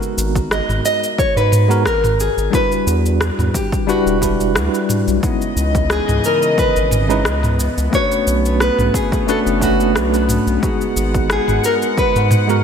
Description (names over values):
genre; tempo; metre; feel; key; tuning
sunset chillout; 89 BPM; 4/4; swing 54% on 16ths; unclear; A4 = 441 Hz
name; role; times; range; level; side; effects
tine electric piano; accompaniment; 0.0-12.6 s; G3 to B4; -20 LUFS; moving between left 6 dB and right 6 dB; medium stereo tremolo, auto-pan, ping-pong delay
smooth R&B drum kit; drums; 0.0-12.6 s; rim click, shaker, toms; -21 LUFS; equal; none
round analog bass; bass; 0.2-12.6 s; E1 to G#2; -19 LUFS; equal; none
electronic kick drum; drums; 0.4-12.1 s; none; -21 LUFS; equal; overdrive
nylon-string guitar; melody; 0.5-12.6 s; F#4 to D#5; -19 LUFS; equal; ping-pong delay, slapback echo
dark chamber string section; sustained chords; 5.2-12.6 s; C#3 to F#5; -22 LUFS; left 2 dB; none
room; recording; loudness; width
moderate scoring stage reverb, RT60 2.0 s; big arena sound; -14 LUFS; side -7 dB against mid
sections
0.0-12.6 A section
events
none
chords
0.0 G#m9; 2.5 Em9; 5.2 C#m9; 7.9 Bm9; 10.6 G#m7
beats
0.51 1.19 1.86 | 2.54 3.21 3.88 4.56 | 5.23 5.91 6.58 7.25 | 7.93 8.60 9.28 9.95 | 10.62 11.30 11.97